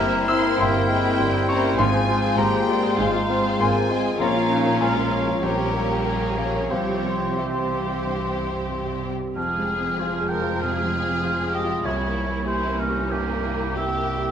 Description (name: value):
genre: classical, romantic movement for piano and orchestra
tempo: 89-102 BPM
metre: 4/4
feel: rubato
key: F minor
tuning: A4 = 436 Hz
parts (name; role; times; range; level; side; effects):
- clear baby grand piano; melody; 0.0-14.3 s; Bb1 to E6; -26 LUFS; left 2 dB; none
- warm studio violin section; melody; 0.0-14.3 s; C4 to C6; -32 LUFS; left 5 dB; none
- clear clarinet; second line; 0.0-9.0 s; Eb4 to Bb4; -32 LUFS; equal; none
- hollow concert flute; second line; 0.0-9.0 s; G5 to C6; -31 LUFS; left 1 dB; none
- mellow oboe; second line; 0.0-14.3 s; G4 to G5; -29 LUFS; right 1 dB; none
- warm symphonic violin section; second line; 0.0-14.3 s; Bb3 to C5; -31 LUFS; left 3 dB; none
- dark bassoon; accompaniment; 0.0-9.0 s; F3 to Db4; -30 LUFS; right 2 dB; none
- warm studio viola section; accompaniment; 0.0-14.3 s; E3 to Db4; -31 LUFS; right 2 dB; none
- mellow French horn section; sustained chords; 0.0-9.0 s; E3 to E4; -29 LUFS; left 3 dB; none
- rich studio double bass section; bass; 0.0-14.3 s; F1 to C2; -32 LUFS; right 4 dB; none
- warm studio cello section; bass; 0.0-14.3 s; C2 to C3; -31 LUFS; right 3 dB; none
- timpani; percussion; 6.7-7.7 s; C3; -41 LUFS; equal; none
room: wet concert hall reverb, RT60 2.0 s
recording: none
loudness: -20 LUFS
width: side -8 dB against mid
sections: 0.0-9.4 A section; 9.4-14.3 B section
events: none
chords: 0.0 C7/G; 1.8 Fm/Ab; 4.2 Bbm; 5.4 Gdim/Bb; 6.7 C; 9.4 Fm; 11.8 C7b9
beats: 0.58 1.19 | 1.78 2.38 2.99 3.60 | 4.20 4.81 5.43 6.06 | 6.71 7.38 8.04 8.70 | 9.37 10.00 10.62 11.24 | 11.85 12.47 13.11 13.77